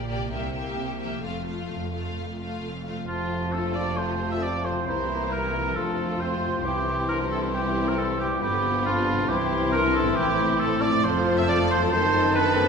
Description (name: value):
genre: classical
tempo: 135 BPM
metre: 4/4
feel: straight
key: F major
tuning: A4 = 440 Hz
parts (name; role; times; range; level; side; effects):
- warm symphonic violin section; melody; 0.0-12.7 s; F4 to F5; -34 LUFS; left 3 dB; none
- warm symphonic violin section; second line; 0.0-12.7 s; A3 to A4; -32 LUFS; left 2 dB; none
- rich symphonic viola section; accompaniment; 0.0-12.7 s; C3 to Bb3; -34 LUFS; equal; none
- concert harp; arpeggios; 0.0-12.7 s; F2 to C5; -36 LUFS; left 6 dB; none
- rich symphonic cello section; bass; 0.0-12.7 s; C2 to C3; -34 LUFS; right 4 dB; none
- rich symphonic double bass section; bass; 0.0-12.7 s; F1 to C2; -33 LUFS; right 2 dB; none
- mellow clarinet; second line; 3.1-12.7 s; B3 to F4; -33 LUFS; left 3 dB; none
- mellow concert flute; second line; 3.1-12.7 s; A5 to C6; -32 LUFS; left 1 dB; none
- warm oboe; second line; 3.1-12.7 s; F4 to E5; -27 LUFS; right 2 dB; none
- dark bassoon; accompaniment; 3.1-12.7 s; D#3 to F3; -33 LUFS; right 2 dB; none
- mellow French horn section; sustained chords; 3.1-12.7 s; A3 to F4; -32 LUFS; left 4 dB; none
room: wet scoring stage reverb, RT60 1.7 s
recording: minimal, uncompressed stereo recording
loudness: -22 LUFS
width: side -6 dB against mid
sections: 0.0-3.1 A section; 3.1-12.7 A section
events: none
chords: 0.3 C7; 1.2 F; 4.9 C7; 5.8 F; 6.6 C; 8.4 G7; 9.3 C; 10.2 Am7; 11.1 F; 11.9 F#dim7